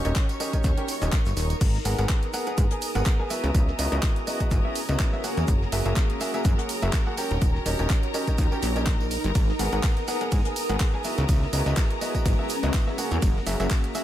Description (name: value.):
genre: piano house.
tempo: 124 BPM.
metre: 4/4.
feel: swing 55% on 16ths.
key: G# minor.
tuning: A4 = 439 Hz.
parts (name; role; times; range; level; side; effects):
clear symphonic string section; sustained chords; 0.0-14.0 s; A#4 to C#6; -35 LUFS; equal; sidechain pumping.
clear grand piano; riff; 0.0-14.0 s; A#3 to G#5; -31 LUFS; equal; sidechain pumping.
plucky analog bass; bass; 0.0-13.7 s; D#1 to G#2; -26 LUFS; equal; sidechain pumping.
granular cloud pad; texture; 0.0-14.0 s; C#4 to D#6; -33 LUFS; equal; built-in reverb, sidechain pumping.
house drum kit; drums; 0.1-14.0 s; crash cymbal, handclaps, hi-hat, ride cymbal, tambourine; -33 LUFS; right 2 dB; none.
damped 70s drum kit; drums; 0.2-14.0 s; hi-hat, shaker, snare drum; -43 LUFS; left 2 dB; none.
electronic kick drum; drums; 0.2-13.8 s; none; -23 LUFS; equal; none.
room: small room ambience.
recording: none.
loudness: -22 LUFS.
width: side -12 dB against mid.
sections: 0.0-14.0 A section.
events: none.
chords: 0.0 D#7; 1.6 G#m9; 3.3 C#m11; 5.5 F#9; 7.2 D#7; 9.4 G#m9; 11.0 C#m11; 13.2 F#9.